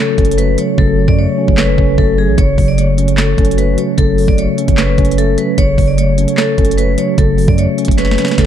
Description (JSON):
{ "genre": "hip hop, trap", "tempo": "150 BPM", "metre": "4/4", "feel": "half-time", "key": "F# minor", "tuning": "A4 = 442 Hz", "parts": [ { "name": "vibraphone with medium hard mallets", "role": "melody", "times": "0.0-8.5 s", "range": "G#4 to D5", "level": "-18 LUFS", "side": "equal", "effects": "ping-pong delay" }, { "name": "mellow tine electric piano", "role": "accompaniment", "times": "0.0-8.5 s", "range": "C#3 to C#5", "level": "-15 LUFS", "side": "right 1 dB", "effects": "slow stereo tremolo" }, { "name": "glassy FM pad", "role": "sustained chords", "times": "0.0-8.5 s", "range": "F#3 to C#5", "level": "-24 LUFS", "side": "left 3 dB", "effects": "ensemble chorus, built-in reverb, phaser" }, { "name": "long sustained 808-style bass", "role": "bass", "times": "0.2-8.5 s", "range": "F#1 to F#2", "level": "-15 LUFS", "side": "equal", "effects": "none" }, { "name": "trap drum kit", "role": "drums", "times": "0.2-8.5 s", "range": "handclaps, hi-hat, kick drum, snare drum", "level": "-15 LUFS", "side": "equal", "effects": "overdrive" } ], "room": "digital ambience", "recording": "dark, warm production", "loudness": "-10 LUFS", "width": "side -10 dB against mid", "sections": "0.0-8.5 A section", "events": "hi-hats muted 0.8-2.4; drum fill 8.0-8.5", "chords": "0.0 F#m" }